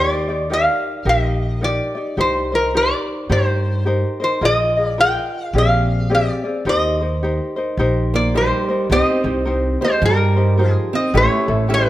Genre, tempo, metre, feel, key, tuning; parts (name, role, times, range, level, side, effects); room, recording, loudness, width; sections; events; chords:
Hawaiian; 107 BPM; 4/4; swing 61% on 8ths; Eb major; A4 = 440 Hz
metal-body resonator slide guitar; melody; 0.0-11.9 s; Bb4 to G5; -19 LUFS; equal
ukulele; accompaniment; 0.0-11.9 s; C4 to Eb5; -22 LUFS; left 2 dB
upright bass; bass; 0.0-11.9 s; A1 to G2; -20 LUFS; equal
picked acoustic archtop guitar; second line; 8.1-11.9 s; G3 to C4; -22 LUFS; right 4 dB
moderate recital hall reverb, RT60 1.6 s; -15 LUFS; side -14 dB against mid
0.0-8.9 A section; 8.9-11.9 B section
0.0 Ebmaj7; 2.2 Cm7; 4.4 Bb7sus4; 5.5 Bb13; 6.7 Eb6; 8.9 Cm7; 11.1 A7